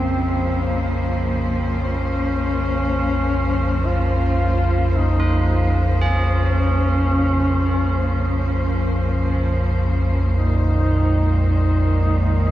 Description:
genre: dark ambient drone.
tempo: 55 BPM.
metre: 4/4.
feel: straight.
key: Bb minor.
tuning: A4 = 440 Hz.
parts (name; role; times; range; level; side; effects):
warm duduk; melody; 0.0-12.5 s; Bb3 to F4; -24 LUFS; left 1 dB; diffuse ambient delay.
rich studio cello section; sustained chords; 0.0-12.5 s; Bb2 to C5; -25 LUFS; left 1 dB; none.
tubular bells; arpeggios; 0.0-12.5 s; Eb4 to Ab4; -31 LUFS; right 2 dB; diffuse ambient delay.
deep rumbling drone; drone; 0.0-12.5 s; Bb1 to F2; -19 LUFS; equal; built-in reverb, phaser, wide subtle chorus.
room: wet cathedral reverb, RT60 5.3 s.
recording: none.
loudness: -17 LUFS.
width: side -14 dB against mid.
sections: 0.0-12.5 A section.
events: none.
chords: 0.0 Bbm; 10.4 Absus2/Bb.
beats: 0.57 | 1.66 2.75 3.85 4.94 | 6.03 7.12 8.21 9.30 | 10.39 11.48.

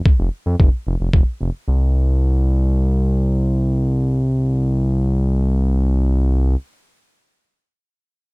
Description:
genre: synth-pop.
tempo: 111 BPM.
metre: 4/4.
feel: straight.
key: unclear.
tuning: A4 = 441 Hz.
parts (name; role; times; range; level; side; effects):
electronic kick drum; drums; 0.1-1.3 s; none; -13 LUFS; equal; none.
smooth synth bass; bass; 0.2-6.6 s; E1 to F2; -16 LUFS; equal; none.
room: little or no reverb.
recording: none.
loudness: -16 LUFS.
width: side -31 dB against mid.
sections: 0.0-1.7 A section; 1.7-6.0 B section.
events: none.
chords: none.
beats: 0.05 0.59 1.14 | 1.68 2.22 2.76 3.30 | 3.84 4.38 4.92 5.46.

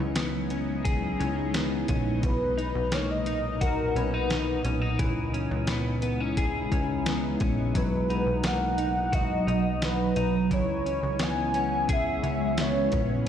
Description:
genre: dream pop.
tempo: 87 BPM.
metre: 4/4.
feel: straight.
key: unclear.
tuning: A4 = 440 Hz.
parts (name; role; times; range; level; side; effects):
ethereal airy pad; sustained chords; 0.0-13.3 s; A#2 to E4; -31 LUFS; right 1 dB; ensemble chorus, built-in reverb, phaser.
clean electric guitar; arpeggios; 0.0-13.3 s; E3 to G#4; -31 LUFS; left 3 dB; analog chorus, tape echo.
plucky analog bass; bass; 0.0-13.3 s; A#1 to C#2; -31 LUFS; equal; none.
clean 12-bit digital drum machine; drums; 0.2-13.1 s; hi-hat, kick drum, snare drum; -30 LUFS; equal; none.
warm velvety synth lead; melody; 2.3-13.1 s; A#4 to G#5; -30 LUFS; equal; chorus, tape echo.
vibraphone with medium mallets; texture; 8.1-13.3 s; B4 to A#5; -42 LUFS; equal; tape echo.
room: light reverb, digital ambience.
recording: played on a big sound system in a bare room, stone room reverb.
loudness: -24 LUFS.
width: side -9 dB against mid.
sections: 0.0-13.3 A section.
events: none.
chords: 0.0 C#m7; 2.2 Bmaj7; 5.0 C#m7; 7.8 Bmaj7; 10.5 C#m7.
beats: 0.16 0.85 1.54 | 2.23 2.92 3.61 4.30 | 4.99 5.68 6.37 7.06 | 7.75 8.44 9.13 9.82 | 10.51 11.20 11.89 12.58 | 13.27.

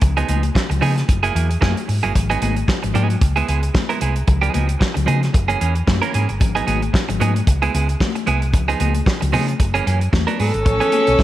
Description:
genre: disco.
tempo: 113 BPM.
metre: 4/4.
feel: swing 56% on 16ths.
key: unclear.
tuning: A4 = 440 Hz.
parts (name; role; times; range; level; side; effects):
semi-hollow electric guitar; accompaniment; 0.0-11.2 s; E3 to A#4; -22 LUFS; right 6 dB; spring reverb.
hollow-body short-scale fingered electric bass; bass; 0.0-11.2 s; F#1 to C#3; -20 LUFS; equal; none.
warm soul drum kit; drums; 0.0-11.2 s; hi-hat, kick drum, snare drum; -20 LUFS; equal; gated reverb.
congas; percussion; 0.0-11.2 s; none; -28 LUFS; left 10 dB; none.
breathy alto saxophone; melody; 10.4-11.2 s; A4; -17 LUFS; right 1 dB; none.
warm symphonic violin section; second line; 10.7-11.2 s; C#4 to C#5; -20 LUFS; left 2 dB; none.
room: small room ambience.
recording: none.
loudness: -16 LUFS.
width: side -14 dB against mid.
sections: 0.0-10.7 A section.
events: none.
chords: 0.0 C#9; 1.1 F#9; 2.1 G#m7; 3.2 C#m7; 4.3 C#9; 5.3 F#9; 6.4 G#m7; 7.5 C#m7; 8.5 C#9; 9.6 F#9; 10.1 E9; 10.7 Amaj9.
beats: | 0.02 0.55 1.08 1.62 | 2.15 2.68 3.21 3.75 | 4.28 4.81 5.34 5.87 | 6.41 6.94 7.47 8.00 | 8.53 9.07 9.60 10.13 | 10.66 11.19.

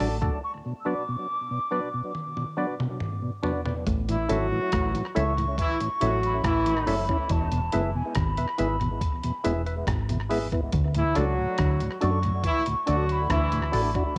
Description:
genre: roots reggae.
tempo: 70 BPM.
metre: 4/4.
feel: straight.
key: A major.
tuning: A4 = 440 Hz.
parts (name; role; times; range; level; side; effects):
mellow hollow silver concert flute; melody; 0.0-14.2 s; G#5 to E6; -34 LUFS; equal; cassette tape, tape echo.
mellow tonewheel organ; accompaniment; 0.0-14.0 s; D2 to F#4; -34 LUFS; equal; overdrive, chorus vibrato, slow rotary speaker, cassette tape, tape echo.
percussive organ stab; stabs; 0.0-13.9 s; D4 to E5; -34 LUFS; equal; chorus, cassette tape.
deep dub fingered electric bass; bass; 0.0-13.9 s; E1 to F#2; -30 LUFS; equal; none.
dusty soul sampler-style drum kit; drums; 0.0-14.1 s; hi-hat, kick drum, rim click, toms; -33 LUFS; equal; cassette tape, tape echo.
warm horn section; second line; 4.1-13.9 s; E3 to F#4; -32 LUFS; equal; cassette tape, tape echo.
room: light reverb, digital ambience.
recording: home recording on cassette.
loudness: -26 LUFS.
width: mono.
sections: 0.0-3.9 A section; 3.9-14.2 B section.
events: break 0.4-3.9; drum fill 2.1-3.9.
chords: 0.4 Bm; 3.9 A; 7.3 E; 10.7 D.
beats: | 0.43 1.29 2.15 3.01 | 3.87 4.72 5.58 6.44 | 7.30 8.16 9.02 9.87 | 10.73 11.59 12.45 13.30 | 14.16.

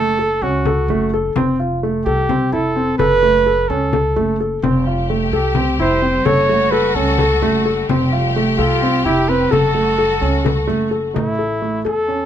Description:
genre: contemporary instrumental, chamber music in an uneven meter.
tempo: 257 BPM (eighths).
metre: 7/8.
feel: straight.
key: unclear.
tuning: A4 = 437 Hz.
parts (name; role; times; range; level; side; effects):
clear flugelhorn; melody; 0.0-12.3 s; E4 to C#5; -18 LUFS; right 2 dB; none.
dark baby grand piano; arpeggios; 0.0-12.3 s; A3 to A4; -18 LUFS; left 1 dB; none.
upright bass; bass; 0.0-12.3 s; F1 to E2; -21 LUFS; right 1 dB; none.
frame drum; percussion; 0.4-12.2 s; none; -23 LUFS; left 3 dB; none.
clear symphonic string section; sustained chords; 4.6-11.1 s; G3 to G4; -23 LUFS; left 4 dB; none.
room: light reverb.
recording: none.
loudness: -14 LUFS.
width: side -10 dB against mid.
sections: 0.0-11.2 A section; 11.2-12.3 B section.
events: none.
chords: 0.0 F#m; 1.4 Fadd9; 3.0 F#m; 4.6 Fadd9; 6.3 F#m; 7.9 Fadd9; 9.5 F#m; 11.2 A.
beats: 0.19 0.43 0.66 0.89 1.13 | 1.36 1.59 1.83 2.06 2.29 2.53 2.76 | 2.99 3.23 3.46 3.69 3.93 4.16 4.39 | 4.63 4.86 5.09 5.33 5.56 5.79 6.03 | 6.26 6.49 6.72 6.96 7.19 7.42 7.66 | 7.89 8.12 8.36 8.59 8.82 9.06 9.29 | 9.52 9.76 9.99 10.22 10.46 10.69 10.92 | 11.15 11.39 11.62 11.86 12.09.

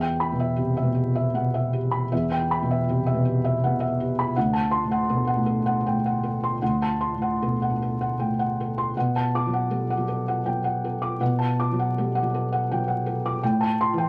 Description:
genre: neoclassical minimalist piano.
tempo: 80 BPM.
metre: 3/4.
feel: rubato.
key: E minor.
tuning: A4 = 440 Hz.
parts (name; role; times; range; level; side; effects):
felt-muted upright piano; solo; 0.0-14.1 s; D2 to D6; -24 LUFS; equal; none.
room: wet studio reverb, RT60 0.7 s.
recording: vinyl crackle.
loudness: -24 LUFS.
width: mono.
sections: 0.0-14.1 A section.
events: none.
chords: 0.0 Em; 4.4 D7; 8.9 Bm7; 13.4 Am7.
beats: 0.59 1.35 | 2.12 2.87 3.62 | 4.36 5.09 5.84 | 6.61 7.39 8.18 | 8.95 9.71 10.46 | 11.21 11.95 12.69 | 13.41.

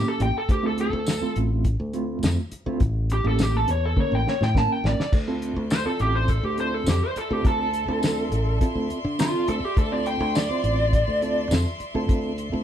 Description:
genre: straight-eighth soul blues.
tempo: 103 BPM.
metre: 4/4.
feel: straight.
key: D minor.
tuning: A4 = 438 Hz.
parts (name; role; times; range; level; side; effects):
lead guitar through a small cranked amp; melody; 0.0-11.5 s; F4 to A5; -26 LUFS; equal; overdrive.
mellow reed electric piano; accompaniment; 0.0-12.6 s; A3 to C5; -29 LUFS; right 3 dB; fast tremolo.
fingered electric bass; bass; 0.0-12.6 s; A1 to D3; -26 LUFS; equal; none.
cloth-damped thuddy drum kit; drums; 0.2-12.5 s; crash cymbal, hi-hat, kick drum, snare drum, tambourine, toms; -24 LUFS; equal; none.
dark chamber string section; sustained chords; 5.1-12.6 s; D5 to C6; -35 LUFS; left 2 dB; none.
room: light reverb.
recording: band playing live in one room.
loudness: -21 LUFS.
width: side -10 dB against mid.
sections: 0.0-5.1 A section; 5.1-12.6 B section.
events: drum fill 4.0-5.1; lead electric guitar solo 5.1-12.6.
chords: 0.5 Dm9; 2.8 A7b9; 5.1 Dm9.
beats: | 0.49 1.07 1.65 2.23 | 2.81 3.39 3.97 4.55 | 5.13 5.71 6.29 6.87 | 7.45 8.03 8.61 9.19 | 9.77 10.35 10.93 11.51 | 12.09.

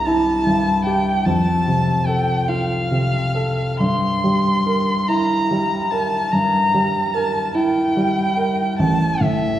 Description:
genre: classical, romantic duo for violin and grand piano.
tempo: 44-50 BPM (dotted quarters).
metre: 12/8.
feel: rubato.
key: unclear.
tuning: A4 = 438 Hz.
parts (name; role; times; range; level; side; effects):
warm violin; melody; 0.0-9.6 s; E5 to C6; -20 LUFS; equal; none.
clear grand piano; accompaniment; 0.0-9.6 s; A1 to Bb4; -18 LUFS; equal; none.
room: wet scoring stage reverb, RT60 1.7 s.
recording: heard from further back in the room.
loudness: -16 LUFS.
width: side -12 dB against mid.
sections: 0.0-9.6 A section.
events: none.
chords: 0.0 C; 1.3 F; 3.8 C7/G; 8.8 N.C..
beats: 0.07 1.27 2.49 | 3.81 5.08 6.32 7.54 | 8.79.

